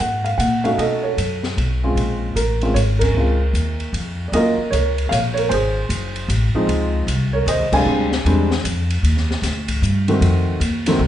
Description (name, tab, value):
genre	jazz piano trio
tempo	153 BPM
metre	3/4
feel	swing 64% on 8ths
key	unclear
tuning	A4 = 440 Hz
part	warm upright piano	melody	0.0-11.0 s	Eb3 to Ab5	-20 LUFS	right 1 dB	none
part	upright bass	bass	0.0-11.1 s	Gb1 to B2	-19 LUFS	equal	none
part	open jazz drum kit	drums	0.0-10.9 s	crash cymbal, hi-hat, kick drum, ride cymbal, snare drum	-27 LUFS	left 2 dB	none
room	moderate recital hall reverb, RT60 1.4 s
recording	recorded in a church or concert hall, nothing above 10.3 kHz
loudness	-17 LUFS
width	side -11 dB against mid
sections	0.0-4.3 A section; 4.3-11.1 B section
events	band accent 3.0, 7.7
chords	0.0 Gbmaj7; 0.8 B9; 2.0 Bbm7; 4.3 Eb7sus2; 5.5 Ab7b9; 6.7 Dbmaj9; 7.9 Dm9b5; 9.0 Ebmaj7; 10.2 F7b9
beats	0.00 0.40 | 0.79 1.18 1.58 | 1.97 2.36 2.76 | 3.15 3.54 3.94 | 4.33 4.72 5.12 | 5.51 5.90 6.29 | 6.69 7.08 7.47 | 7.86 8.26 8.65 | 9.04 9.43 9.83 | 10.22 10.61 11.00